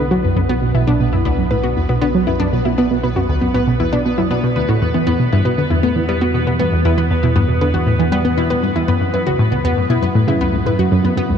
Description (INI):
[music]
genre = ambient, sequencer-driven space music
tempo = 118 BPM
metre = 4/4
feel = straight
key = unclear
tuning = A4 = 441 Hz
[part]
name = wide unison pluck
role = arpeggios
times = 0.0-11.3 s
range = B3 to B4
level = -20 LUFS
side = left 2 dB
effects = auto-pan, ping-pong delay
[part]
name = analog pluck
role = riff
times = 0.0-11.4 s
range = C#2 to B3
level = -16 LUFS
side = right 1 dB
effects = chorus, ping-pong delay
[part]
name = analog drone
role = bass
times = 0.0-11.4 s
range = B1 to F#2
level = -23 LUFS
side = equal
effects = chorus
[part]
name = pulsing gated texture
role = texture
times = 0.0-11.4 s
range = B3 to B4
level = -24 LUFS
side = equal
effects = chorus, built-in reverb
[sound]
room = wet huge ambient reverb, RT60 7.6 s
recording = dark, warm production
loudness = -14 LUFS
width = side -8 dB against mid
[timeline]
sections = 0.0-11.4 A section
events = none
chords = 0.0 Bm; 4.8 E5; 8.9 F#5